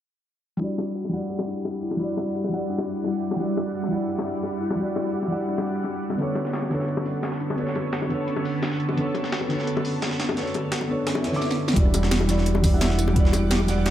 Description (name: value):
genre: liquid drum and bass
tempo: 172 BPM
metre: 4/4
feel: straight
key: E dorian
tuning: A4 = 440 Hz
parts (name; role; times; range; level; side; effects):
- felt-muted upright piano; accompaniment; 0.6-13.9 s; D3 to D6; -26 LUFS; equal; none
- shimmering ambient pad; sustained chords; 1.8-13.9 s; D3 to D6; -32 LUFS; right 2 dB; chorus, built-in reverb, phaser, sidechain pumping
- kalimba; arpeggios; 0.6-13.9 s; C#4 to A4; -32 LUFS; left 1 dB; low-pass filter, dub echo
- bongos; percussion; 0.8-13.7 s; none; -32 LUFS; left 4 dB; none
- breakbeat sampler-style drum kit; drums; 6.2-13.9 s; hi-hat, snare drum; -31 LUFS; right 1 dB; high-pass filter on hats, high-pass filter on snare, high-pass filter on room
- swell; sound effects; 11.2-11.8 s; none; -34 LUFS; equal; none
- drum and bass drum kit; drums; 11.4-13.9 s; hi-hat, rim click, snare drum, tambourine; -28 LUFS; right 1 dB; overdrive, low-pass filter on snare, low-pass filter on hats, low-pass filter on perc
- smooth synth bass; bass; 11.8-13.9 s; E1; -22 LUFS; equal; none
- electronic kick drum; drums; 11.8-13.2 s; none; -20 LUFS; equal; none
room: light reverb, digital ambience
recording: low-pass filter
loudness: -22 LUFS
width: side -11 dB against mid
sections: 0.6-11.8 A section; 11.8-13.9 B section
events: filter sweep on kalimba 0.6-11.8; filter sweep 0.6-11.8; swell 11.2-11.8; drum fill 11.4-11.8; drop 11.8-13.9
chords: 0.6 Em9; 6.2 Bm9; 11.8 Em9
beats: | 0.60 0.95 1.30 1.65 | 2.00 2.35 2.70 3.04 | 3.39 3.74 4.09 4.44 | 4.79 5.14 5.49 5.84 | 6.18 6.53 6.88 7.23 | 7.58 7.93 8.28 8.63 | 8.98 9.32 9.67 10.02 | 10.37 10.72 11.07 11.42 | 11.77 12.12 12.46 12.81 | 13.16 13.51 13.86